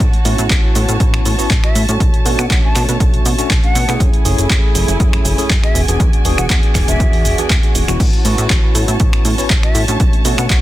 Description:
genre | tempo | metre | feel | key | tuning
filtered disco house | 120 BPM | 4/4 | straight | A major | A4 = 438 Hz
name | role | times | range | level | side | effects
muted chamber violin section | sustained chords | 0.0-10.6 s | A3 to A5 | -25 LUFS | equal | sidechain pumping
plucky analog bass | bass | 0.0-10.6 s | E1 to B2 | -19 LUFS | equal | sidechain pumping
electronic kick drum | drums | 0.0-10.6 s | none | -14 LUFS | equal | none
punchy analog drum machine | drums | 0.0-10.6 s | crash cymbal, finger snaps, handclaps, hi-hat, shaker | -20 LUFS | right 1 dB | sidechain pumping on hats, sidechain pumping on perc, soft clipping on snare, sidechain pumping on cymbals
tine electric piano | accompaniment | 0.2-10.6 s | A3 to G#4 | -21 LUFS | equal | medium stereo tremolo, phaser, sidechain pumping
mellow hollow jazz flute | melody | 1.6-10.6 s | E5 to A5 | -25 LUFS | left 2 dB | sidechain pumping, tape echo
room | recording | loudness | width
little or no reverb | dense, heavily limited modern master | -11 LUFS | side -15 dB against mid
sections
0.0-10.6 A section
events
none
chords
0.0 A6; 2.0 Bm9; 4.0 F#m9; 5.8 E9; 8.0 A6; 10.0 Bm9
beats
| 0.00 0.50 1.00 1.50 | 2.00 2.50 3.00 3.50 | 4.00 4.50 5.00 5.50 | 6.00 6.50 7.00 7.50 | 8.00 8.50 9.00 9.50 | 10.00 10.50

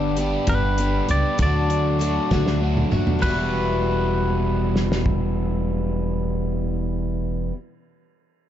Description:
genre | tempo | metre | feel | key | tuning
folk rock and heartland rock | 65 BPM (dotted quarters) | 6/8 | straight | E minor | A4 = 440 Hz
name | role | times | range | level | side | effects
picked swing-style acoustic guitar | accompaniment | 0.0-7.6 s | E2 to G4 | -28 LUFS | left 6 dB | none
crunchy overdriven guitar | riff | 0.0-7.6 s | E2 to G4 | -25 LUFS | right 2 dB | none
upright bass | bass | 0.0-7.5 s | E1 to D#2 | -24 LUFS | equal | none
natural country drum kit | drums | 0.2-5.2 s | hi-hat, kick drum, ride cymbal, snare drum, toms | -25 LUFS | right 1 dB | none
twangy electric guitar | melody | 0.5-7.5 s | B4 to D5 | -28 LUFS | equal | analog delay
room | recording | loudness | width
light reverb, small room ambience | dark, warm production, nothing above 7.8 kHz | -20 LUFS | side -10 dB against mid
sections
0.0-3.2 A section; 3.2-6.9 B section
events
drum fill 2.3-3.2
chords
0.0 G; 1.4 D; 3.2 Emadd9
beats
0.47 | 1.39 2.30 | 3.22 4.14 | 5.05 5.97

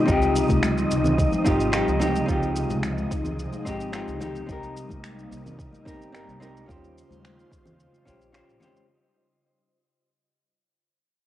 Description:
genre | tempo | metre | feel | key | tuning
sunset chillout | 109 BPM | 4/4 | straight | Db lydian | A4 = 440 Hz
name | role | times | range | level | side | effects
airy breathy pad | sustained chords | 0.0-8.9 s | C3 to C5 | -29 LUFS | right 1 dB | chorus, phaser, cassette tape
wind-like tuned noise texture | texture | 0.0-8.9 s | Eb4 to Eb5 | -30 LUFS | left 1 dB | built-in reverb, cassette tape
vintage hollow-body jazz guitar | accompaniment | 0.1-8.9 s | C4 to C5 | -27 LUFS | left 1 dB | auto-pan, cassette tape, analog delay
upright bass | bass | 0.1-8.6 s | G1 to Eb2 | -30 LUFS | equal | none
electronic kick drum | drums | 0.1-8.2 s | none | -27 LUFS | equal | small room ambience, cassette tape
electronic shaker and finger snaps | drums | 0.1-8.9 s | none | -33 LUFS | equal | small room ambience, cassette tape
congas | percussion | 0.5-8.7 s | none | -31 LUFS | left 1 dB | none
room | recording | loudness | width
moderate spring reverb, RT60 2.4 s | home recording on cassette | -21 LUFS | side -13 dB against mid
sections
0.0-8.9 A section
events
fade-out 0.0-8.9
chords
0.1 Dbmaj9#11; 4.5 Cm7; 6.7 Eb13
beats
| 0.08 0.63 1.18 1.73 | 2.28 2.83 3.38 3.93 | 4.48 5.03 5.58 6.13 | 6.68 7.24 7.79 8.34

